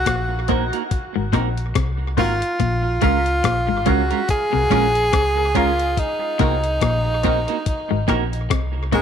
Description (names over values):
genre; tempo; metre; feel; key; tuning
roots reggae; 71 BPM; 4/4; swing 58% on 16ths; unclear; A4 = 441 Hz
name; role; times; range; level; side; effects
bright tenor saxophone; melody; 0.0-9.0 s; Ab3 to Ab4; -22 LUFS; equal; tape echo
vintage muted fingered electric bass; bass; 0.0-9.0 s; Ab1 to Db2; -23 LUFS; equal; none
clean electric guitar; riff; 0.1-9.0 s; Ab2 to Db3; -26 LUFS; left 11 dB; none
breakbeat sampler-style drum kit; drums; 0.1-9.0 s; hi-hat, kick drum, rim click; -24 LUFS; left 3 dB; tape echo
clean electric guitar; accompaniment; 0.5-9.0 s; Ab3 to Bb4; -25 LUFS; right 14 dB; tape echo
filtered dub chord stab; stabs; 0.5-9.0 s; C4 to Bb4; -28 LUFS; left 13 dB; chorus
room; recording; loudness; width
light reverb, digital ambience; 1960s-style stereo with parts hard left and right; -17 LUFS; side -8 dB against mid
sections
0.0-9.0 A section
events
none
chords
0.0 Cm7b5; 2.6 Bbm7; 6.0 Cm7b5